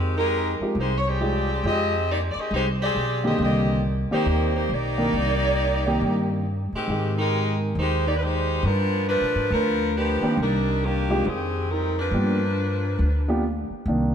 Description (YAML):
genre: jazz, big band swing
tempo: 138 BPM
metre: 4/4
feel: swing 65% on 8ths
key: C minor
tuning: A4 = 440 Hz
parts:
  - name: edgy saxophone section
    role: melody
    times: 0.0-13.4 s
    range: Eb3 to Eb5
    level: -24 LUFS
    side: equal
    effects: none
  - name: upright bass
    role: bass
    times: 0.0-14.1 s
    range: B1 to A#2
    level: -25 LUFS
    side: equal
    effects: none
  - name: warm baby grand piano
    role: accompaniment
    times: 0.6-14.1 s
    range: D3 to D5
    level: -27 LUFS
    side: equal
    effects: none
room: wet echo chamber reverb, RT60 2.2 s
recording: heard from further back in the room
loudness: -21 LUFS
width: side -8 dB against mid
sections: 0.0-13.9 A section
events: none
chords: 0.0 Fm9; 3.4 Cm9; 6.9 Abmaj7; 8.6 G7#9; 10.4 Cm9; 11.2 Fm9; 12.1 G7#9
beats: 0.32 0.76 1.20 | 1.64 2.08 2.52 2.95 | 3.39 3.83 4.27 4.70 | 5.14 5.58 6.01 6.45 | 6.89 7.32 7.76 8.19 | 8.63 9.07 9.50 9.94 | 10.37 10.81 11.24 11.68 | 12.12 12.55 12.99 13.42 | 13.86